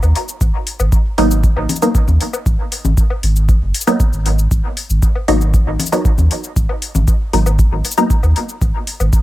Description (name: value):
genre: dub techno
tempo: 117 BPM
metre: 4/4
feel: straight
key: G# minor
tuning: A4 = 441 Hz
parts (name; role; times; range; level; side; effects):
- warm sub bass; bass; 0.0-9.1 s; F#1 to D#2; -14 LUFS; equal; sidechain pumping
- electronic cabasa and hi-hat; drums; 0.0-9.2 s; none; -24 LUFS; left 3 dB; none
- woodblock and congas; percussion; 0.0-9.1 s; none; -25 LUFS; left 5 dB; overdrive, sidechain pumping on perc, dub echo
- electronic kick drum; drums; 0.4-9.2 s; none; -15 LUFS; equal; none
- filtered dub chord stab; stabs; 1.2-8.1 s; F#3 to D#4; -19 LUFS; equal; chorus, phaser, sidechain pumping, dub echo
room: little or no reverb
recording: none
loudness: -13 LUFS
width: side -15 dB against mid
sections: 0.0-9.2 A section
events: none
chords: 0.0 G#m7